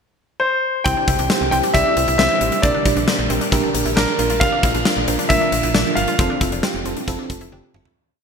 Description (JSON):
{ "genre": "synth-pop", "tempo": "135 BPM", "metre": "4/4", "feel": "straight", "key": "unclear", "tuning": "A4 = 440 Hz", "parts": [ { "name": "warm baby grand piano", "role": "melody", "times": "0.4-7.5 s", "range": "Bb4 to G5", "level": "-20 LUFS", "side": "left 1 dB", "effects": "ping-pong delay" }, { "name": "FM electric piano with soft pad layer", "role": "accompaniment", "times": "0.9-7.9 s", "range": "C4 to D5", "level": "-25 LUFS", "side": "right 4 dB", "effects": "chorus, tremolo" }, { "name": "phased string machine", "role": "sustained chords", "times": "0.9-8.0 s", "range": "A2 to G4", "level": "-26 LUFS", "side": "equal", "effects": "ensemble chorus, phaser" }, { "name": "wide unison pluck", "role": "arpeggios", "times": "0.9-7.9 s", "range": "C4 to F4", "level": "-28 LUFS", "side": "left 1 dB", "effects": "ping-pong delay" }, { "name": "slap-like FM bass", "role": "bass", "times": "0.9-7.8 s", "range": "F1 to C2", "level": "-25 LUFS", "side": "equal", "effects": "none" }, { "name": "huge arena drum kit", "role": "drums", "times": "0.9-8.0 s", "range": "hi-hat, kick drum, snare drum, toms", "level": "-20 LUFS", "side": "left 1 dB", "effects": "gated reverb" } ], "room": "wet lush hall reverb, RT60 2.1 s", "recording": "bright 1980s-style digital production", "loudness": "-15 LUFS", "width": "side -6 dB against mid", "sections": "0.0-0.9 pickup bar; 0.9-8.0 pre-chorus", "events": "fade-out 6.2-8.0; drum fill 7.5-8.0", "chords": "0.0 N.C.; 0.9 C; 2.6 Gm/Bb; 4.2 Bb; 6.2 F", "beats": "0.41 | 0.86 1.30 1.75 2.19 | 2.63 3.08 3.52 3.97 | 4.41 4.86 5.30 5.75 | 6.19 6.63 7.08 7.52" }